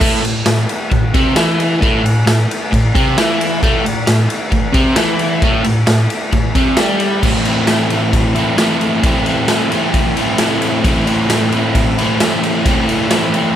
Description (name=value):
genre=garage rock duo or trio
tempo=133 BPM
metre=4/4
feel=straight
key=A minor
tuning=A4 = 443 Hz
part: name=crunchy overdriven guitar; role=riff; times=0.0-13.6 s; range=A2 to G4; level=-14 LUFS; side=equal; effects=none
part: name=raw garage drum kit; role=drums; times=0.0-13.4 s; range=crash cymbal, kick drum, ride cymbal, snare drum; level=-16 LUFS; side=equal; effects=none
room=light reverb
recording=none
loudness=-12 LUFS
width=side -10 dB against mid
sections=0.0-7.2 A section; 7.2-13.6 B section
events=none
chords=0.0 Am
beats=| 0.01 0.47 0.92 1.37 | 1.82 2.27 2.73 3.18 | 3.63 4.08 4.53 4.98 | 5.43 5.88 6.33 6.78 | 7.23 7.68 8.14 8.59 | 9.04 9.49 9.94 10.40 | 10.85 11.30 11.75 12.20 | 12.66 13.11